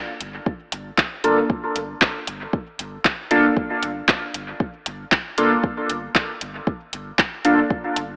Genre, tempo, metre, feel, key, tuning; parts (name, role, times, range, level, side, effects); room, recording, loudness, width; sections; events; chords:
dub techno; 116 BPM; 4/4; swing 54% on 16ths; G minor; A4 = 444 Hz
soft dub sub bass; bass; 0.2-8.1 s; G1; -40 LUFS; equal; tube saturation, sidechain pumping
deep house drum kit; drums; 0.2-8.1 s; handclaps, hi-hat; -24 LUFS; equal; dub echo
electronic kick drum; drums; 0.5-7.8 s; -26 LUFS; equal
resonant sweep polysynth; stabs; 1.2-7.6 s; Bb3 to A4; -24 LUFS; equal; chorus, phaser, cassette tape, sidechain pumping, dub echo
moderate lush hall reverb, RT60 2.0 s, digital ambience; AM radio sound; -22 LUFS; mono
0.0-8.2 A section